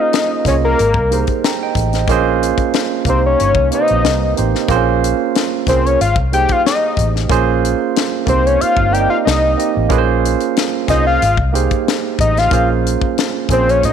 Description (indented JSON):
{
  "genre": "R&B, neo-soul",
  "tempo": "92 BPM",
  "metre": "4/4",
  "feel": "swing 53% on 16ths",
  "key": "Bb dorian",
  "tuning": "A4 = 438 Hz",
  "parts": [
    { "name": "fat analog lead", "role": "melody", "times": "0.0-13.9 s", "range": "Bb4 to G5", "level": "-16 LUFS", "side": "left 3 dB", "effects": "none" },
    { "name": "barky tine electric piano", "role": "accompaniment", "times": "0.0-13.9 s", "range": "C3 to Bb5", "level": "-17 LUFS", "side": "right 11 dB", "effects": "overdrive" },
    { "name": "tight funk drum kit", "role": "drums", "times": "0.1-13.9 s", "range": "hi-hat, kick drum, snare drum", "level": "-20 LUFS", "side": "left 4 dB", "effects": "none" },
    { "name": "vintage muted fingered electric bass", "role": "bass", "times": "0.5-13.9 s", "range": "G1 to Bb2", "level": "-17 LUFS", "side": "left 1 dB", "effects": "tube saturation" }
  ],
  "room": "light reverb, studio reverb",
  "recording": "1960s-style stereo",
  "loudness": "-12 LUFS",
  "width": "side -8 dB against mid",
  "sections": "0.0-13.9 A section",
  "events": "none",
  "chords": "0.0 Bbm9; 0.8 Abmaj9; 2.1 Bbm9; 3.1 Cm7; 4.7 Bbm9; 6.0 Abmaj13; 7.3 Bbm9; 8.3 Cm7; 9.9 Bbm9; 11.2 Abmaj13; 12.5 Bbm9"
}